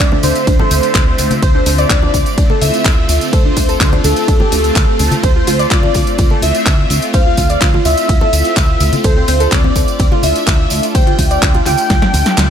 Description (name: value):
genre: progressive house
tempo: 126 BPM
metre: 4/4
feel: straight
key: unclear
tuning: A4 = 435 Hz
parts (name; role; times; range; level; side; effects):
- wide unison lead; melody; 0.0-12.5 s; A4 to G5; -17 LUFS; equal; wide subtle chorus, sidechain pumping, dub echo
- supersaw pad; sustained chords; 0.0-12.5 s; D3 to E5; -21 LUFS; equal; phaser, sidechain pumping
- soft round pluck; arpeggios; 0.0-12.5 s; C4 to G5; -20 LUFS; equal; wide subtle chorus, sidechain pumping, digital delay
- plucky analog bass; bass; 0.0-12.5 s; D2; -17 LUFS; equal; sidechain pumping
- deep house drum kit; drums; 0.0-12.5 s; handclaps, hi-hat, ride cymbal, snare drum; -19 LUFS; equal; overdrive
- electronic kick drum; drums; 0.0-12.0 s; none; -13 LUFS; equal; none
- congas; percussion; 0.1-12.2 s; none; -22 LUFS; left 2 dB; sidechain pumping on perc
- tambourine; percussion; 0.2-12.5 s; none; -25 LUFS; right 5 dB; none
room: digital ambience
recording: none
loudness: -10 LUFS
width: side -8 dB against mid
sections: 0.0-12.5 A section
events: drum fill 11.9-12.5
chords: 0.0 Dm7; 5.2 F/D